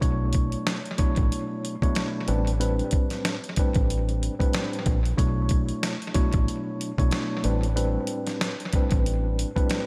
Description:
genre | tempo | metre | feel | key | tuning
hip hop, boom-bap hip-hop | 93 BPM | 4/4 | swing 58% on 16ths | unclear | A4 = 440 Hz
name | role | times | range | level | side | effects
mellow tine electric piano | accompaniment | 0.0-9.9 s | A2 to C#5 | -31 LUFS | equal | cassette tape, high-pass filter, low-pass filter, tape echo
deep dub fingered electric bass | bass | 0.0-9.4 s | A1 to B1 | -28 LUFS | equal | none
dusty soul sampler-style drum kit | drums | 0.0-9.9 s | hi-hat, kick drum, snare drum | -28 LUFS | equal | tape echo
room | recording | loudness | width
little or no reverb | echo-heavy mix | -25 LUFS | mono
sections
0.0-9.9 A section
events
none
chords
0.0 Bm11; 2.3 Am11; 5.2 Bm11; 7.4 Am11

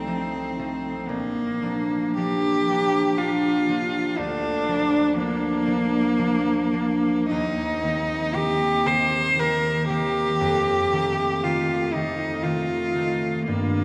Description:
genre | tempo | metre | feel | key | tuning
classical, romantic duo for cello and harp | 58 BPM | 3/4 | uneven beats, rubato | Bb major | A4 = 445 Hz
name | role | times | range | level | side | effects
clear cello | melody | 0.0-13.8 s | Bb3 to C5 | -26 LUFS | equal | none
concert harp | accompaniment | 0.0-13.8 s | Bb1 to Eb4 | -27 LUFS | equal | none
room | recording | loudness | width
wet cathedral reverb, RT60 4.5 s | none | -23 LUFS | mono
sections
0.0-13.8 A section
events
none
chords
0.0 F7/C; 1.1 Bb; 4.2 Bb/D; 7.3 Cm7/Eb; 10.4 F7

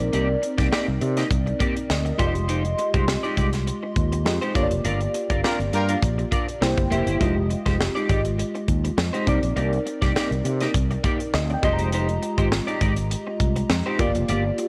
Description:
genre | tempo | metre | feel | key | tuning
polished 1980s jazz-funk pop | 102 BPM | 4/4 | swing 54% on 16ths | F dorian | A4 = 440 Hz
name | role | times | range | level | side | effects
FM electric piano with soft pad layer | accompaniment | 0.0-14.7 s | G3 to C6 | -29 LUFS | equal | analog chorus, cassette tape
electric guitar at the edge of break-up | riff | 0.0-14.6 s | Ab3 to F5 | -31 LUFS | equal | analog chorus, cassette tape
fretless electric bass | bass | 0.0-14.5 s | F1 to C3 | -27 LUFS | equal | none
crisp fusion drum kit | drums | 0.1-14.7 s | hi-hat, kick drum, snare drum | -28 LUFS | equal | none
clear horn section | second line | 5.4-5.9 s | F4 to Bb4 | -30 LUFS | equal | cassette tape
room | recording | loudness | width
small room ambience | home recording on cassette | -23 LUFS | mono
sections
0.0-14.7 A section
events
FM electric piano fill 1.6-2.5, 6.3-7.2, 11.0-11.9; band accent 4.8-7.2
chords
0.0 Cm9; 2.2 Fm9; 4.6 Gm7; 6.6 C7; 7.2 Fm9; 9.3 Cm9; 11.6 Fm9; 14.0 Gm7

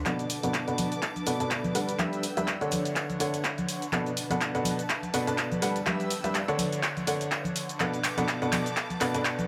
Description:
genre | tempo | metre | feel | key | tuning
piano house | 124 BPM | 4/4 | swing 56% on 16ths | B minor | A4 = 440 Hz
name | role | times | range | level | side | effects
dark studio violin section | sustained chords | 0.0-9.5 s | B4 to E6 | -43 LUFS | equal | sidechain pumping
bright grand piano | riff | 0.0-9.5 s | B2 to A5 | -32 LUFS | equal | sidechain pumping, low-pass filter, tape echo
ethereal airy pad | texture | 0.0-9.5 s | D4 to A5 | -43 LUFS | equal | none
electronic kick drum | drums | 0.1-9.4 s | none | -42 LUFS | equal | high-pass filter on kick
punchy analog drum machine | drums | 0.1-9.5 s | cabasa, handclaps, hi-hat | -34 LUFS | equal | high-pass filter on perc, high-pass filter on snare, high-pass filter on hats, high-pass filter on room
tambourine and congas | percussion | 0.1-9.5 s | none | -38 LUFS | equal | none
room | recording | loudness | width
light reverb, digital ambience | none | -29 LUFS | mono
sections
0.1-9.5 A section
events
build-up 0.1-9.5; drum fill 0.1-9.5; filter sweep on grand piano 0.1-9.5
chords
0.1 Bm7; 2.0 G6; 2.7 Dmaj7; 3.9 Bm7; 5.9 G6; 6.6 Dmaj7; 7.8 Bm7

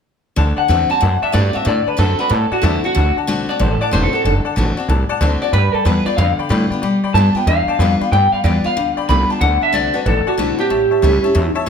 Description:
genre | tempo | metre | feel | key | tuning
rockabilly | 186 BPM | 4/4 | swing 65% on 8ths | D mixolydian | A4 = 441 Hz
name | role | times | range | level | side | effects
bright upright piano | accompaniment | 0.4-11.7 s | C#5 to B5 | -24 LUFS | left 7 dB | none
picked steel-string acoustic guitar | accompaniment | 0.4-11.7 s | E2 to F#4 | -21 LUFS | left 2 dB | none
upright bass | bass | 0.4-11.6 s | E1 to B2 | -17 LUFS | right 1 dB | none
electric guitar through a small old amp | melody | 0.6-11.5 s | E4 to B5 | -17 LUFS | equal | wide subtle chorus, tape echo
room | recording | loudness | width
moderate recital hall reverb, RT60 1.4 s | none | -13 LUFS | side -6 dB against mid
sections
0.4-11.7 A section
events
none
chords
0.4 D7; 5.5 G7; 9.4 D7; 10.7 A7

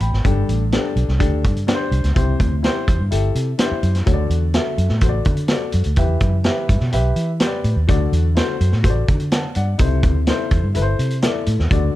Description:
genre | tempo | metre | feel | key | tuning
uptempo 1960s-style soul | 126 BPM | 4/4 | straight | unclear | A4 = 440 Hz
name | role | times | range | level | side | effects
warm baby grand piano | accompaniment | 0.0-12.0 s | G2 to B5 | -24 LUFS | left 4 dB | none
vintage muted fingered electric bass | bass | 0.0-11.9 s | G1 to E3 | -18 LUFS | equal | none
vintage drum kit | drums | 0.0-11.8 s | hi-hat, kick drum, snare drum | -20 LUFS | equal | none
room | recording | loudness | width
little or no reverb | dark, warm production | -16 LUFS | side -15 dB against mid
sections
0.0-12.0 A section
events
none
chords
0.2 Gsus2; 2.2 C; 4.1 D; 6.0 Em; 7.9 D; 9.8 C6

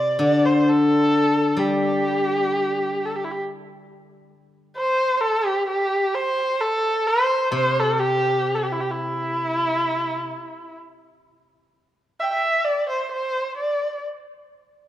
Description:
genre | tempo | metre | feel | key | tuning
chinese traditional, Chinese chamber ensemble | 65 BPM | 4/4 | straight | G zhi mode | A4 = 440 Hz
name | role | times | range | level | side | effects
dark erhu | melody | 0.0-14.0 s | E4 to G5 | -21 LUFS | equal | none
steel-string zither | accompaniment | 0.0-10.3 s | C3 to G3 | -22 LUFS | left 2 dB | none
room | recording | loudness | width
moderate concert hall reverb, RT60 2.2 s | dark, warm production | -19 LUFS | side -12 dB against mid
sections
0.0-14.9 A section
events
none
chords
none

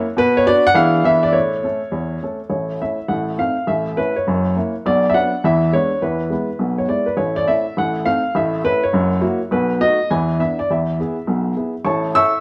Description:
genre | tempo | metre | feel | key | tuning
jazz, stride piano | 206 BPM | 4/4 | swing 63% on 8ths | A major | A4 = 436 Hz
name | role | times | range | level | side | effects
clear upright piano | solo | 0.0-12.4 s | F#1 to E6 | -18 LUFS | equal | none
room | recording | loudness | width
moderate stone room reverb, RT60 1.1 s | band playing live in one room | -18 LUFS | mono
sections
0.0-2.5 A section; 2.5-11.9 A section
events
none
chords
0.2 Bm; 0.8 E7; 1.4 A; 3.1 Adim7; 3.7 A; 4.3 F#7; 4.8 Bm; 5.4 E7; 6.0 E; 7.2 A; 7.8 Adim7; 8.3 A; 8.9 F#7; 9.5 B7; 10.1 E7; 10.7 E; 11.9 A

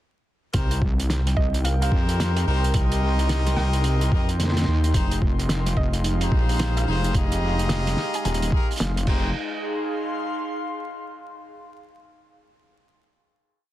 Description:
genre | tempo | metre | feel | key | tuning
glitch hop | 109 BPM | 4/4 | swing 62% on 16ths | F minor | A4 = 442 Hz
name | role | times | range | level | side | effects
brilliant horn section | stabs | 0.5-9.3 s | Eb4 to Eb5 | -30 LUFS | left 2 dB | sidechain pumping, tape echo
wobble bass | bass | 0.5-9.3 s | Eb1 to F2 | -22 LUFS | equal | chorus, overdrive
cloth-damped thuddy drum kit | drums | 0.5-9.2 s | crash cymbal, hi-hat, snare drum | -29 LUFS | right 1 dB | none
electronic kick drum | drums | 0.5-9.2 s | none | -23 LUFS | equal | none
airy breathy pad | texture | 0.5-11.5 s | Ab3 to C6 | -31 LUFS | equal | chorus, sidechain pumping
woody wave-folded pluck | melody | 1.4-8.4 s | Eb5 to Ab5 | -35 LUFS | right 2 dB | chorus, tape echo
room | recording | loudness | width
light reverb | dense, heavily limited modern master, vinyl crackle | -20 LUFS | side -14 dB against mid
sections
0.5-9.3 drop; 9.3-11.5 final chord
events
drop 0.5-9.3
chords
0.5 Cm7; 4.9 Fm7

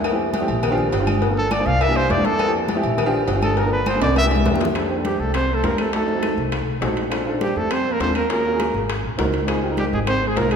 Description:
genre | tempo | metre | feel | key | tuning
Afro-Cuban jazz | 203 BPM | 4/4 | straight | F major | A4 = 440 Hz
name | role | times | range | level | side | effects
warm baby grand piano | accompaniment | 0.0-10.6 s | A3 to C5 | -24 LUFS | equal | none
upright bass | bass | 0.0-10.6 s | G1 to F2 | -25 LUFS | equal | none
agogo bells and timbales | percussion | 0.0-10.6 s | none | -28 LUFS | right 3 dB | none
claves | percussion | 0.0-10.6 s | none | -39 LUFS | left 4 dB | none
congas | percussion | 0.0-10.6 s | none | -29 LUFS | left 3 dB | none
cowbell and bongos | percussion | 0.0-10.5 s | none | -28 LUFS | left 5 dB | none
breathy trumpet | melody | 1.4-10.6 s | G4 to F5 | -23 LUFS | equal | none
breathy trombone | second line | 5.1-10.6 s | G3 to C4 | -26 LUFS | right 3 dB | none
room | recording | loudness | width
wet scoring stage reverb, RT60 1.8 s | recorded in a church or concert hall | -18 LUFS | side -7 dB against mid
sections
0.0-4.8 A section; 4.8-10.6 B section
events
trumpet solo 0.0-4.8; drum fill 4.0-4.8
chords
0.0 Fmaj7; 0.6 Bb69; 1.2 Gm7; 1.8 C7; 2.4 Fmaj7; 3.0 Bb69; 3.6 Gm7; 4.2 C7; 4.8 F69; 5.9 F7b9; 7.1 Bbmaj7; 8.3 Ebm11; 8.9 Ab7; 9.5 Dbmaj7

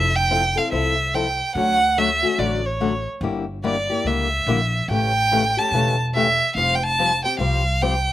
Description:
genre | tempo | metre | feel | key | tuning
acoustic string swing (jazz manouche) | 144 BPM | 4/4 | swing 62% on 8ths | unclear | A4 = 438 Hz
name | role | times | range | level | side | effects
rich violin | melody | 0.0-8.1 s | C#5 to A5 | -20 LUFS | right 2 dB | none
picked old ladder-braced acoustic guitar | accompaniment | 0.0-7.9 s | C#3 to C5 | -25 LUFS | left 6 dB | slapback echo
upright bass | bass | 0.0-8.1 s | E1 to D2 | -25 LUFS | equal | none
room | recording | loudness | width
little or no reverb | recorded outdoors, with no room sound | -18 LUFS | side -13 dB against mid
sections
0.0-8.1 A section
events
none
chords
0.0 Fmaj7; 1.6 Dmaj7; 3.2 Gm6; 4.9 A7; 6.6 Fsus2

